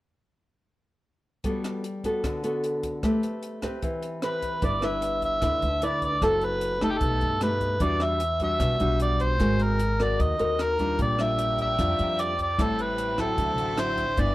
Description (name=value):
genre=bossa nova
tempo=151 BPM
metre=4/4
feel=straight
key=G major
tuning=A4 = 439 Hz
part: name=nylon-string guitar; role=accompaniment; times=1.4-14.3 s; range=G2 to B4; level=-28 LUFS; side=left 1 dB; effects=none
part: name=compact cocktail drum kit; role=drums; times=1.4-14.3 s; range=hi-hat, kick drum, rim click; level=-33 LUFS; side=equal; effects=none
part: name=overdriven harmonica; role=melody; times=4.2-14.3 s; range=G4 to E5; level=-26 LUFS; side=equal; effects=none
part: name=upright bass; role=bass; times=4.6-14.3 s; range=F#1 to G2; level=-29 LUFS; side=equal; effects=none
part: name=clear studio violin section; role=sustained chords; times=11.0-14.3 s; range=A3 to E5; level=-37 LUFS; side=equal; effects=none
room=light reverb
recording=lossy compression artefacts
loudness=-23 LUFS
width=side -17 dB against mid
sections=1.4-4.6 A section; 4.6-14.3 B section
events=none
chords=1.4 Gmaj9; 3.0 Am9; 4.6 G6; 6.2 F#m7b5; 7.0 Baug7; 7.8 Em9; 9.4 Ab9; 11.0 Bb6; 12.6 Am7; 13.4 D9